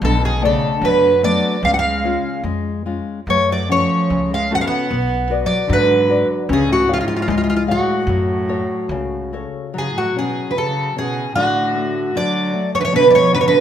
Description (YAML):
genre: fado-style ballad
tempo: 75 BPM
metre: 2/4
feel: rubato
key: F# harmonic minor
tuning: A4 = 440 Hz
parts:
  - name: fingerpicked twelve-string acoustic guitar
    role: melody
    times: 0.0-13.6 s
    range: E#4 to F#5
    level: -17 LUFS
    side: right 1 dB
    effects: none
  - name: warm cello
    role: second line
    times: 0.0-13.6 s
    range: G#2 to B3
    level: -23 LUFS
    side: right 3 dB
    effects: none
  - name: nylon-string guitar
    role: accompaniment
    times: 0.0-13.6 s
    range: B2 to F#5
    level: -23 LUFS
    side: left 5 dB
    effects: none
  - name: upright bass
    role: bass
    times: 0.0-9.4 s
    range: B1 to G#2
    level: -23 LUFS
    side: equal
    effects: none
room: moderate recital hall reverb, RT60 1.5 s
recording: minimal, uncompressed stereo recording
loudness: -15 LUFS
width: side -9 dB against mid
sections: 0.0-9.7 A section; 9.7-13.6 A section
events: none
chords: 0.0 Bm7; 1.6 C#; 3.3 F#m; 4.9 Bm; 6.5 C#; 8.1 F#m; 9.7 F#5; 11.4 D; 12.9 Bm